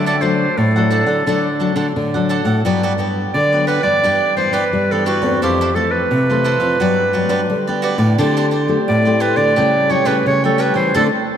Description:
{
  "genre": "samba",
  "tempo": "87 BPM",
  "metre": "4/4",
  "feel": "straight",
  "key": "G major",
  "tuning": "A4 = 440 Hz",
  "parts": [
    { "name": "bright clarinet", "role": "melody", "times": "0.0-11.0 s", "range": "F#4 to D5", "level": "-18 LUFS", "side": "right 1 dB", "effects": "none" },
    { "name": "cavaquinho", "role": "accompaniment", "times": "0.0-11.1 s", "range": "D4 to G5", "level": "-23 LUFS", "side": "right 4 dB", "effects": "none" },
    { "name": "nylon-string guitar", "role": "accompaniment", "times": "0.0-11.1 s", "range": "F2 to G4", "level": "-20 LUFS", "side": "left 3 dB", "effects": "none" },
    { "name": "nylon-string guitar", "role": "bass", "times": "0.0-11.1 s", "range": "E2 to G3", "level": "-19 LUFS", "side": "equal", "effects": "none" }
  ],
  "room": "wet cathedral reverb, RT60 5.1 s",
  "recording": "in a vast, echoing space",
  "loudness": "-14 LUFS",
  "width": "side -9 dB against mid",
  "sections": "0.0-11.4 A section",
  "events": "band accent 11.0-11.4",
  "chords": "0.0 D; 2.7 Gmaj7; 4.0 Em7/G; 5.4 Fmaj7; 6.8 Gmaj7; 8.2 D7sus4; 9.6 A7/C#"
}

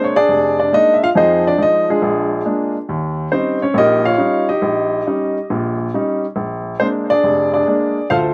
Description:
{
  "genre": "solo jazz",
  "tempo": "138 BPM",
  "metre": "4/4",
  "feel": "swing 66% on 8ths",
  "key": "Bb mixolydian",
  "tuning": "A4 = 440 Hz",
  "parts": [
    { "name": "warm baby grand piano", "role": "solo", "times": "0.0-8.3 s", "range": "F1 to F5", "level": "-16 LUFS", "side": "equal", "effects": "slapback echo" }
  ],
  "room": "little or no reverb",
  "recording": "recorded outdoors, with no room sound",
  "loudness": "-16 LUFS",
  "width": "mono",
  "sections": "0.0-8.3 A section",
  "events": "none",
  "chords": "0.0 Bb7; 1.2 Fm7; 2.0 Bb7; 2.9 Eb7; 6.4 Bb7"
}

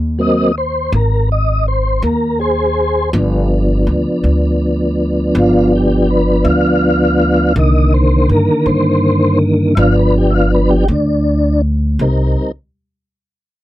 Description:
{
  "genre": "slow blues",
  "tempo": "54 BPM (dotted quarters)",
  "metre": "12/8",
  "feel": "straight",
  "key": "C minor",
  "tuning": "A4 = 441 Hz",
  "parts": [
    { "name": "upright bass", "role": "bass", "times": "0.0-12.3 s", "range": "G1 to G2", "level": "-15 LUFS", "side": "equal", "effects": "none" },
    { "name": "mellow tonewheel organ", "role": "sustained chords", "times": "0.2-12.5 s", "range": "D3 to F5", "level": "-13 LUFS", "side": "equal", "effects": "slow rotary speaker, overdrive, chorus vibrato" }
  ],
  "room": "little or no reverb",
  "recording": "dry, close 1970s-style studio recording",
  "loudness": "-11 LUFS",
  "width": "side -14 dB against mid",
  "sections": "0.0-12.0 A section; 12.0-13.6 B section",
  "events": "tonewheel organ solo 0.0-12.0",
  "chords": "0.0 Ab7; 3.1 G7; 7.6 Cm7; 9.8 G7; 12.0 Cm7"
}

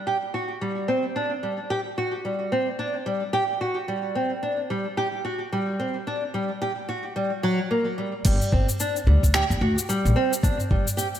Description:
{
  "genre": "organic downtempo",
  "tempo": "110 BPM",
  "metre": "4/4",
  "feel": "swing 60% on 16ths",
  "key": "G harmonic minor",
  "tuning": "A4 = 439 Hz",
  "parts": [
    { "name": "nylon-string guitar", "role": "arpeggios", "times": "0.1-11.1 s", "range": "F#3 to G4", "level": "-25 LUFS", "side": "equal", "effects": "wide subtle chorus, digital delay" },
    { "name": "deep house drum kit", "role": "drums", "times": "8.2-11.2 s", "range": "cabasa, crash cymbal, finger snaps", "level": "-28 LUFS", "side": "left 2 dB", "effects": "overdrive" },
    { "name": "upright bass", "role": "bass", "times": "8.3-10.8 s", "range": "G1 to D2", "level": "-22 LUFS", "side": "equal", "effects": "tube saturation" },
    { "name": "electronic kick drum", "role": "drums", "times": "8.3-10.8 s", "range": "none", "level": "-22 LUFS", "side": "equal", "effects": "none" }
  ],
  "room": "moderate lush hall reverb, RT60 1.7 s",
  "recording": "bright 1980s-style digital production",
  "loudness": "-22 LUFS",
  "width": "side -10 dB against mid",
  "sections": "0.0-8.2 A section; 8.2-11.2 B section",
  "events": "none",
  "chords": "0.0 N.C.; 8.2 G5"
}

